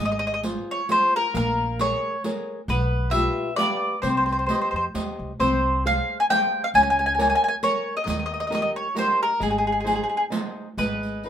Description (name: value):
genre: italian folk, Italian serenade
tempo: 133 BPM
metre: 3/4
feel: swing 54% on 8ths, rubato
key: Ab major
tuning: A4 = 439 Hz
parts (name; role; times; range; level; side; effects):
- mandolin; melody; 0.0-11.3 s; Ab4 to Ab5; -22 LUFS; equal; none
- flamenco guitar; accompaniment; 0.0-11.3 s; Eb3 to Ab5; -29 LUFS; left 2 dB; none
- upright bass; bass; 0.0-11.3 s; Ab1 to F2; -29 LUFS; equal; none
- riq; percussion; 0.4-11.3 s; none; -32 LUFS; right 4 dB; none
room: moderate small room reverb, RT60 0.6 s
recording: minimal, uncompressed stereo recording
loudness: -21 LUFS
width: side -9 dB against mid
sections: 0.0-10.8 A section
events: none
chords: 0.0 Ab6; 1.3 Bbm7; 2.7 G7/B; 4.0 Cm; 5.4 Fm/C; 6.7 Bbm7/Db; 8.1 Eb; 9.4 Ab; 10.8 G#m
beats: 0.44 0.90 | 1.35 1.80 2.24 | 2.69 3.13 3.58 | 4.03 4.49 4.95 | 5.41 5.86 6.30 | 6.75 7.19 7.63 | 8.07 8.51 8.96 | 9.41 9.86 10.32 | 10.78 11.24